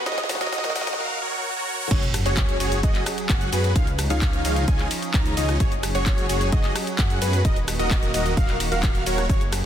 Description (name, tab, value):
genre	EDM, festival progressive house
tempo	130 BPM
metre	4/4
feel	straight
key	F# major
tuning	A4 = 440 Hz
part	lush unison pad	sustained chords	0.0-9.7 s	D#2 to G#4	-32 LUFS	right 1 dB	chorus, sidechain pumping
part	wide unison lead	arpeggios	0.0-9.4 s	B4 to A#5	-31 LUFS	equal	sidechain pumping, digital delay
part	dense compressed supersaw	riff	0.0-9.4 s	D#4 to A#5	-28 LUFS	equal	sidechain pumping, digital delay
part	riser, swell and sub drop	sound effects	0.0-3.8 s	none	-32 LUFS	equal	none
part	house drum kit	drums	0.1-9.6 s	crash cymbal, handclaps, hi-hat, ride cymbal, rim click, shaker, snare drum	-29 LUFS	equal	none
part	dark grand piano	accompaniment	0.3-1.0 s	D#3 to F#4	-37 LUFS	left 2 dB	sidechain pumping, digital delay
part	detuned saw bass	bass	1.9-9.6 s	D#1 to F#2	-26 LUFS	equal	sidechain pumping
part	electronic kick drum	drums	1.9-9.4 s	none	-22 LUFS	equal	none
room	light reverb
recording	dense, heavily limited modern master, high-pass filter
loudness	-20 LUFS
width	side -10 dB against mid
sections	0.0-1.9 A section; 1.9-9.7 B section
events	build-up 0.0-1.9; drum fill 0.0-1.0; riser 0.0-1.9; swell 1.0-1.9; drop 1.9-9.7; impact 1.9-3.8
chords	0.1 D#m; 1.9 F#sus2; 3.8 C#add9; 5.6 F#sus2; 7.4 D#m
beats	| 0.06 0.53 0.99 1.45 | 1.91 2.37 2.83 3.29 | 3.76 4.22 4.68 5.14 | 5.60 6.06 6.53 6.99 | 7.45 7.91 8.37 8.83 | 9.29